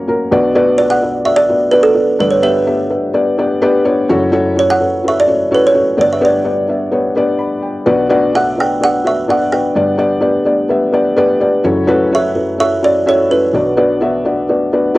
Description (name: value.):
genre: pop.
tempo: 127 BPM.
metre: 4/4.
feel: straight.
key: B minor.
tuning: A4 = 441 Hz.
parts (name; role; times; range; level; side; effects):
felt-muted upright piano; accompaniment; 0.0-15.0 s; F#1 to B5; -13 LUFS; left 1 dB; cassette tape.
buzzing kalimba; melody; 0.8-14.9 s; A4 to G5; -14 LUFS; right 2 dB; none.
room: light reverb.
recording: home recording on cassette.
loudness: -11 LUFS.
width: side -18 dB against mid.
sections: 0.3-15.0 A section.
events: none.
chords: 0.3 Bm; 2.2 G; 4.1 F#m7; 6.0 G; 7.9 Bm; 9.8 G; 11.6 F#m7; 13.5 Bm.